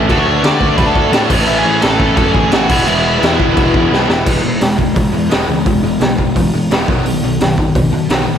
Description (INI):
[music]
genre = punk rock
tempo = 172 BPM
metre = 4/4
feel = straight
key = E mixolydian, E major from 4.3 s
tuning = A4 = 440 Hz
[part]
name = distorted electric guitar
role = riff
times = 0.0-8.4 s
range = A2 to F#4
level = -16 LUFS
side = left 1 dB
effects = distortion
[part]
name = tight distorted guitar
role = riff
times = 0.0-4.1 s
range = E2 to D4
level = -19 LUFS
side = right 1 dB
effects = distortion
[part]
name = fuzz picked electric bass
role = bass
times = 0.0-8.4 s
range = E1 to D3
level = -19 LUFS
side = equal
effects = overdrive
[part]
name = biting lead guitar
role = melody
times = 0.1-3.9 s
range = E4 to D6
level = -18 LUFS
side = equal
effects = overdrive
[part]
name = raw garage drum kit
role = drums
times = 0.1-8.2 s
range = crash cymbal, hi-hat, kick drum, snare drum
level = -15 LUFS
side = equal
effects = none
[sound]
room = moderate lush hall reverb, RT60 1.9 s, small room ambience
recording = big arena sound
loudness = -11 LUFS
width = side -8 dB against mid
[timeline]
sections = 0.0-4.3 A section; 4.3-8.4 B section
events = drum fill 3.9-4.3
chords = 0.1 D; 1.3 A; 2.7 E; 6.9 B